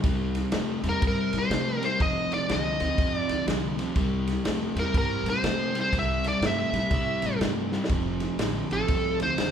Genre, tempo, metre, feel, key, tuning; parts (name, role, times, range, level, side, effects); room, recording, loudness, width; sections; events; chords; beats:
electric blues shuffle; 122 BPM; 4/4; swing 63% on 8ths; C mixolydian; A4 = 440 Hz
overdriven semi-hollow guitar; riff; 0.0-9.5 s; F2 to A3; -29 LUFS; equal
upright bass; bass; 0.0-9.5 s; F1 to C3; -33 LUFS; equal
vintage drum kit; drums; 0.0-9.5 s; kick drum, ride cymbal, snare drum; -29 LUFS; equal
smooth overdriven lead guitar; melody; 0.9-9.5 s; A4 to E5; -28 LUFS; equal
moderate large studio reverb, RT60 1.1 s; band playing live in one room; -24 LUFS; side -8 dB against mid
0.0-9.5 A section
drum fill 7.7
0.0 C; 2.0 F5; 4.0 C; 7.9 F
| 0.04 0.53 1.02 1.51 | 2.00 2.49 2.98 3.48 | 3.97 4.46 4.95 5.45 | 5.94 6.43 6.92 7.41 | 7.91 8.40 8.89 9.39